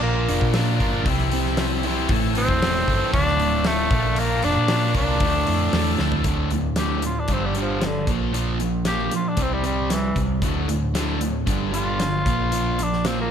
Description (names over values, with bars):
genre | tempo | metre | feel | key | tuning
classic rock | 115 BPM | 4/4 | straight | D minor | A4 = 440 Hz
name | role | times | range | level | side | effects
raspy tenor saxophone | melody | 0.0-13.3 s | D3 to G4 | -25 LUFS | left 1 dB | none
bright tonewheel organ | sustained chords | 0.0-6.2 s | E3 to Bb4 | -35 LUFS | equal | none
sludgy distorted guitar | riff | 0.0-13.3 s | D2 to Bb4 | -26 LUFS | right 11 dB | overdrive
tight distorted guitar | riff | 0.0-13.3 s | D2 to C5 | -28 LUFS | left 12 dB | distortion
hollow-body short-scale fingered electric bass | bass | 0.0-13.3 s | D1 to Bb2 | -26 LUFS | equal | none
huge arena drum kit | drums | 0.3-13.2 s | hi-hat, kick drum, snare drum, toms | -26 LUFS | left 1 dB | none
room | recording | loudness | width
light reverb, small room ambience | none | -19 LUFS | side -8 dB against mid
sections
0.0-6.3 A section; 6.3-13.3 B section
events
drum fill 6.0; tenor saxophone solo 6.3-13.3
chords
0.0 Bb; 1.1 C6; 2.1 Am; 3.1 Dm; 3.9 Bb; 5.2 Dmadd9; 6.3 D5; 7.3 G5; 8.1 Bb5; 9.4 C5; 10.4 D5; 11.5 G5; 12.3 Bb5